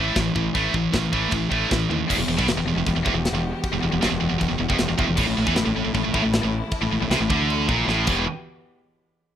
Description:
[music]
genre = heavy metal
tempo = 156 BPM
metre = 4/4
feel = straight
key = E minor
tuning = A4 = 440 Hz
[part]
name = scooped high-gain guitar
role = riff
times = 0.0-8.2 s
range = E2 to A3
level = -24 LUFS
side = right 9 dB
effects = distortion
[part]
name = tight distorted guitar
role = riff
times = 0.0-8.2 s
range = E2 to A3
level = -26 LUFS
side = left 8 dB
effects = distortion
[part]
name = fuzz fingered electric bass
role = bass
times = 0.0-8.3 s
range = E1 to E2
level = -26 LUFS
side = equal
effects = overdrive
[part]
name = tight metal drum kit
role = drums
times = 0.2-8.2 s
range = china cymbal, crash cymbal, kick drum, snare drum, toms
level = -27 LUFS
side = equal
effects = none
[part]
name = bright studio string section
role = sustained chords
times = 2.1-8.3 s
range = E3 to G4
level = -33 LUFS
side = left 2 dB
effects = none
[sound]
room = studio ambience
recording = rough home demo mix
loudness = -20 LUFS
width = side -10 dB against mid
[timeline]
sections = 0.0-2.1 A section; 2.1-8.3 B section; 8.3-9.4 C section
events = drum fill 1.9, 7.9-8.3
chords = 0.0 A5; 2.1 Em; 5.2 A5; 8.1 Em; 8.3 N.C.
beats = 0.17 | 0.56 0.94 1.33 1.71 | 2.10 2.48 2.87 3.26 | 3.64 4.03 4.41 4.80 | 5.19 5.57 5.96 6.34 | 6.73 7.12 7.50 7.89

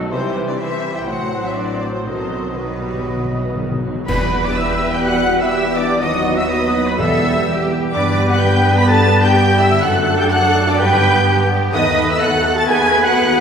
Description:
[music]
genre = classical, dramatic, fast romantic movement for symphony orchestra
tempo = 125 BPM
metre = 4/4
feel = rubato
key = E minor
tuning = A4 = 440 Hz
[part]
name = warm symphonic violin section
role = melody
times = 0.0-13.4 s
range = B3 to B6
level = -24 LUFS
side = left 2 dB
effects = none
[part]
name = clear clarinet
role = second line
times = 0.0-13.4 s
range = B3 to G4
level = -27 LUFS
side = left 2 dB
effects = none
[part]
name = clear oboe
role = second line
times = 0.0-13.4 s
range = B4 to B5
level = -26 LUFS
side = right 2 dB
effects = none
[part]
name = rich symphonic viola section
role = accompaniment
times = 0.0-13.2 s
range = D#3 to B4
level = -26 LUFS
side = right 2 dB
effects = none
[part]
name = warm bassoon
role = accompaniment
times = 0.0-13.4 s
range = E3 to B3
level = -27 LUFS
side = right 1 dB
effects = none
[part]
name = concert harp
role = arpeggios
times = 0.0-13.4 s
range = F#2 to B5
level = -26 LUFS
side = left 3 dB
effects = none
[part]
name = rich symphonic cello section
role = bass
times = 0.0-13.4 s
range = A2 to B4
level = -23 LUFS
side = right 2 dB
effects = none
[part]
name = rich symphonic double bass section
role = bass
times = 0.0-13.4 s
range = A1 to G2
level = -22 LUFS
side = right 1 dB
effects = none
[part]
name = large flute ensemble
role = second line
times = 0.1-13.4 s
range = F#4 to B5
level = -26 LUFS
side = left 1 dB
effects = none
[part]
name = warm symphonic violin section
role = second line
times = 0.1-13.4 s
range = B4 to B5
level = -26 LUFS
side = left 2 dB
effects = none
[part]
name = warm French horn section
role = sustained chords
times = 0.1-13.4 s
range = B3 to B4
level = -25 LUFS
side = left 3 dB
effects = none
[part]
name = timpani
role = percussion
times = 2.1-7.7 s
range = E2 to B2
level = -26 LUFS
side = equal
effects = none
[part]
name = warm trombone section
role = sustained chords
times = 4.1-12.8 s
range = D3 to B3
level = -27 LUFS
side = right 4 dB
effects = none
[part]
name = dark trumpet section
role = stabs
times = 4.1-13.4 s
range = B4 to B5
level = -22 LUFS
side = right 2 dB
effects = none
[part]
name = clash cymbals and concert bass drum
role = percussion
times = 4.1-5.0 s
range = none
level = -28 LUFS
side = equal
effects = none
[sound]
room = wet scoring stage reverb, RT60 1.5 s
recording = heard from further back in the room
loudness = -14 LUFS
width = side -7 dB against mid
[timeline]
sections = 0.0-4.1 A section; 4.1-13.4 B section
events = timpani fill 2.1-4.1; band accent 4.1-4.6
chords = 0.1 C; 1.1 F#dim/A; 2.1 B; 4.1 Em; 6.0 B/D#; 7.0 Em; 7.9 G; 9.8 D/F#; 10.8 G; 11.7 B7/D#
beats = | 0.12 0.60 1.08 1.56 | 2.06 2.57 3.08 3.58 | 4.08 4.56 5.05 5.53 | 6.01 6.49 6.99 7.47 | 7.94 8.41 8.88 9.35 | 9.82 10.30 10.79 11.27 | 11.74 12.21 12.68 13.16

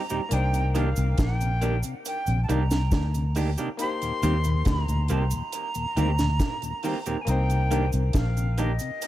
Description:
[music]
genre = lovers rock reggae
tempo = 69 BPM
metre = 4/4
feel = straight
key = unclear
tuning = A4 = 438 Hz
[part]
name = jazz flute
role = melody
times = 0.0-9.1 s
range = Eb5 to C6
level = -32 LUFS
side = right 1 dB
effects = tape echo
[part]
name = bright grand piano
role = accompaniment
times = 0.0-9.1 s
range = Bb3 to C5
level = -35 LUFS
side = left 4 dB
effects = dub echo
[part]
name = mellow tonewheel organ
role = accompaniment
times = 0.1-8.9 s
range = Eb2 to D4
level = -34 LUFS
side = left 4 dB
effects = slow rotary speaker, dub echo
[part]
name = electric guitar through a small old amp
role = stabs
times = 0.1-8.7 s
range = Eb3 to G4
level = -33 LUFS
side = right 5 dB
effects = dub echo
[part]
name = deep reggae drum kit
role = drums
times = 0.1-9.1 s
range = hi-hat, kick drum, snare drum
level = -29 LUFS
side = equal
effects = gated reverb
[part]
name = cabasa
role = percussion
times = 0.1-9.1 s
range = none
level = -41 LUFS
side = right 6 dB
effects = dub echo
[part]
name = vintage muted fingered electric bass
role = bass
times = 0.3-8.8 s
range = Bb1 to Eb2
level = -24 LUFS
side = equal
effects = none
[sound]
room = small room ambience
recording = none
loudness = -23 LUFS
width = side -14 dB against mid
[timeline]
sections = 0.0-9.1 A section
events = none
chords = 0.3 Cm9; 3.8 Eb6; 7.3 Cm9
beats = | 0.31 1.18 2.05 2.92 | 3.79 4.66 5.53 6.40 | 7.27 8.14 9.02

